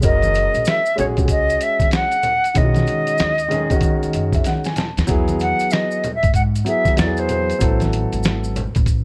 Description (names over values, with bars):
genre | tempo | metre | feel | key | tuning
hip hop, jazz-hop | 95 BPM | 4/4 | swing 63% on 16ths | E major | A4 = 440 Hz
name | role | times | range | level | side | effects
concert flute | melody | 0.0-7.8 s | C5 to F#5 | -22 LUFS | equal | none
dark grand piano | accompaniment | 0.0-8.6 s | D#3 to A5 | -25 LUFS | equal | none
upright bass | bass | 0.0-9.0 s | F#1 to G#2 | -24 LUFS | equal | none
lo-fi sampler-style drum kit | drums | 0.0-9.0 s | hi-hat, kick drum, snare drum | -22 LUFS | equal | none
maracas and congas | percussion | 0.0-9.0 s | none | -32 LUFS | equal | none
room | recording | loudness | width
little or no reverb | none | -18 LUFS | mono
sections
0.0-5.1 A section; 5.1-9.0 B section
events
grand piano fill 3.8-5.1; drum fill 4.5-5.1; flute solo 5.1-9.0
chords
0.0 F#; 2.6 Badd9 (rootless); 5.1 E; 7.6 A5